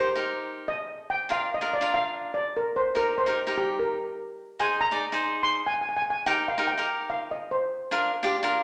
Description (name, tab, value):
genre	calypso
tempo	145 BPM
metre	4/4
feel	swing 54% on 16ths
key	Eb major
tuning	A4 = 440 Hz
part	steel pan	melody	0.0-8.1 s	G4 to C6	-29 LUFS	equal	none
part	cavaquinho	accompaniment	0.0-8.6 s	D4 to D5	-30 LUFS	equal	none
room	wet large studio reverb, RT60 1.2 s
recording	none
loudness	-27 LUFS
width	mono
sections	0.0-8.6 A section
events	steel pan solo 0.0-8.6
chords	0.0 Eb6; 1.3 Bb; 3.0 Eb6; 4.6 Abadd9; 6.3 Eb6; 7.9 Bb